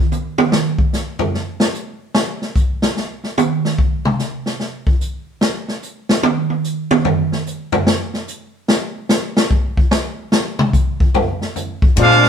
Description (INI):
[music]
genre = jazz, big band swing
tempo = 147 BPM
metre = 4/4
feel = swing 66% on 8ths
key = unclear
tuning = A4 = 441 Hz
[part]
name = swinging big-band drum kit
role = drums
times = 0.1-12.3 s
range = hi-hat, kick drum, ride cymbal, snare drum, toms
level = -15 LUFS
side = equal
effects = none
[part]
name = clear trumpet section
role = melody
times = 12.0-12.3 s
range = D4 to F5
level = -10 LUFS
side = right 2 dB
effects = none
[part]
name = warm trombone section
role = second line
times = 12.0-12.3 s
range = Ab3 to F4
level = -16 LUFS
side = left 4 dB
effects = none
[part]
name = picked old ladder-braced acoustic guitar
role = accompaniment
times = 12.0-12.3 s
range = Bb2 to D4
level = -21 LUFS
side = left 4 dB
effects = none
[part]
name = upright bass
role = bass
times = 12.0-12.3 s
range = Bb2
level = -14 LUFS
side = equal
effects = none
[sound]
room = wet studio reverb, RT60 0.9 s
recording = band playing live in one room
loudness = -16 LUFS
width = side -7 dB against mid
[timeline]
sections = 0.0-12.0 A section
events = drum solo 0.0-12.0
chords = none